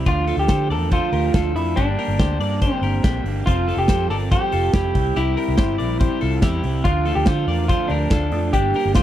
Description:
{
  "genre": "jangly indie pop",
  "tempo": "142 BPM",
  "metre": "4/4",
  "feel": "straight",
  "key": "unclear",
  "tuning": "A4 = 441 Hz",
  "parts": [
    { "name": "crunchy overdriven guitar", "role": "accompaniment", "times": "0.0-9.0 s", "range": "G2 to A4", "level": "-28 LUFS", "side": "right 8 dB", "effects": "tube saturation" },
    { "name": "twelve-string electric guitar", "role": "arpeggios", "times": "0.0-9.0 s", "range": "C4 to D5", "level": "-28 LUFS", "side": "left 7 dB", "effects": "none" },
    { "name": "vintage muted fingered electric bass", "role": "bass", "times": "0.0-9.0 s", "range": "F1 to D3", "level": "-23 LUFS", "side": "equal", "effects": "none" },
    { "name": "electric guitar through a small old amp", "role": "melody", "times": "0.1-9.0 s", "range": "D4 to A4", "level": "-23 LUFS", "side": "equal", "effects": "none" },
    { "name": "big rock drum kit", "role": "drums", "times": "0.1-9.0 s", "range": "hi-hat, kick drum, snare drum", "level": "-20 LUFS", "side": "equal", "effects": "none" }
  ],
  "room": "little or no reverb",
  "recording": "dry, close 1970s-style studio recording",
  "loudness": "-17 LUFS",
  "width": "side -12 dB against mid",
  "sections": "0.0-9.0 A section",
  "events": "none",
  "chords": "0.1 Dm; 1.8 Gm; 3.5 Fadd9; 5.0 C; 6.9 Dm",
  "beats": "| 0.07 0.50 0.92 1.35 | 1.77 2.19 2.62 3.04 | 3.47 3.89 4.32 4.74 | 5.16 5.58 6.01 6.43 | 6.85 7.28 7.70 8.12 | 8.54 8.96"
}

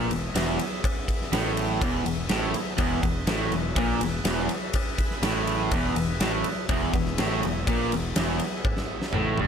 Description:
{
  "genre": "classic rock",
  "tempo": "123 BPM",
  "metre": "4/4",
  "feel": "straight",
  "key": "E major",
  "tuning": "A4 = 440 Hz",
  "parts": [
    { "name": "tonewheel organ", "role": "sustained chords", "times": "0.0-9.5 s", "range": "B3 to E5", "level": "-36 LUFS", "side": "left 1 dB", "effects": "overdrive, slow rotary speaker" },
    { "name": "distorted electric guitar", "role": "riff", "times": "0.0-9.5 s", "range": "E2 to A#2", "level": "-30 LUFS", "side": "left 10 dB", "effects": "distortion" },
    { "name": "raw garage guitar", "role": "riff", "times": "0.0-9.5 s", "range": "E2 to A#2", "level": "-30 LUFS", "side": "right 13 dB", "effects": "overdrive" },
    { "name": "fuzz fingered electric bass", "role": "bass", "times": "0.0-9.5 s", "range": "E1 to A#1", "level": "-31 LUFS", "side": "equal", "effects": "overdrive" },
    { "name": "huge arena drum kit", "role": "drums", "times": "0.1-9.5 s", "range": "kick drum, ride cymbal, snare drum, toms", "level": "-27 LUFS", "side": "equal", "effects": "none" },
    { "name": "cowbell", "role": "percussion", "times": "0.4-9.2 s", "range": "none", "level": "-40 LUFS", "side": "left 12 dB", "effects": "none" }
  ],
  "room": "light reverb, small room ambience",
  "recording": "none",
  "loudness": "-23 LUFS",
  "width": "side -7 dB against mid",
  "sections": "0.0-9.5 A section",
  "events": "drum fill 8.6-9.5",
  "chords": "0.0 E",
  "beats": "0.34 | 0.83 1.32 1.81 2.30 | 2.78 3.27 3.76 4.25 | 4.74 5.22 5.71 6.20 | 6.69 7.18 7.67 8.15 | 8.64 9.13"
}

